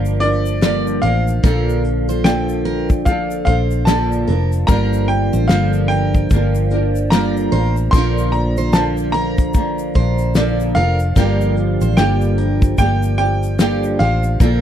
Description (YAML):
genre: acoustic pop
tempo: 74 BPM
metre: 4/4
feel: swing 60% on 16ths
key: G minor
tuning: A4 = 443 Hz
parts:
  - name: flamenco guitar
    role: accompaniment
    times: 0.0-14.6 s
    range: G2 to Bb4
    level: -19 LUFS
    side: equal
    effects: double-tracked left and right
  - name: picked steel-string acoustic guitar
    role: arpeggios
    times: 0.0-14.6 s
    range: Bb4 to D5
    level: -28 LUFS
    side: right 9 dB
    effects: none
  - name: vintage muted fingered electric bass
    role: bass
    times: 0.0-14.6 s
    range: F1 to Bb1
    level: -18 LUFS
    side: equal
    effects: none
  - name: egg shaker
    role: percussion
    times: 0.1-14.6 s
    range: none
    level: -40 LUFS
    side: left 23 dB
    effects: none
  - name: clear upright piano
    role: melody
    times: 0.2-14.6 s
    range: D5 to C6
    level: -23 LUFS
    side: equal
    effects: none
  - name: loose indie drum kit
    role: drums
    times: 0.2-14.6 s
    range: kick drum, shaker, snare drum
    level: -15 LUFS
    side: equal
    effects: none
room: small room reverb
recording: dry, close 1970s-style studio recording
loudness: -14 LUFS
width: side -10 dB against mid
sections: 0.0-14.6 A section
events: none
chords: 0.0 Gm7; 1.4 Bbmaj7; 4.7 Gm7; 7.9 Bbmaj7; 11.2 Gm7